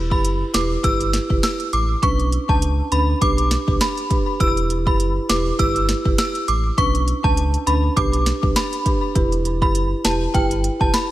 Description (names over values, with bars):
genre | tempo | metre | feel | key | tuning
dancehall | 101 BPM | 4/4 | swing 56% on 16ths | unclear | A4 = 443 Hz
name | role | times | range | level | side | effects
sub bass with octave | bass | 0.0-10.9 s | E1 to D2 | -22 LUFS | equal | none
synth chime | melody | 0.1-11.1 s | G5 to E6 | -23 LUFS | equal | ensemble chorus, ping-pong delay
marimba with medium mallets | accompaniment | 0.1-10.9 s | C#4 to B4 | -24 LUFS | right 2 dB | none
afro-pop drum kit | drums | 0.1-11.1 s | hi-hat, kick drum, rim click, snare drum | -21 LUFS | equal | none
room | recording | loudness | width
little or no reverb | none | -17 LUFS | side -15 dB against mid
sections
0.0-9.2 A section; 9.2-11.1 B section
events
none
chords
0.0 Em; 2.0 Bmadd9; 3.2 G/B; 4.4 Em; 6.8 Bmadd9; 8.0 G/B; 9.2 Em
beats
0.24 0.84 1.43 | 2.03 2.62 3.21 3.81 | 4.40 5.00 5.59 6.19 | 6.78 7.37 7.97 8.56 | 9.16 9.75 10.34 10.94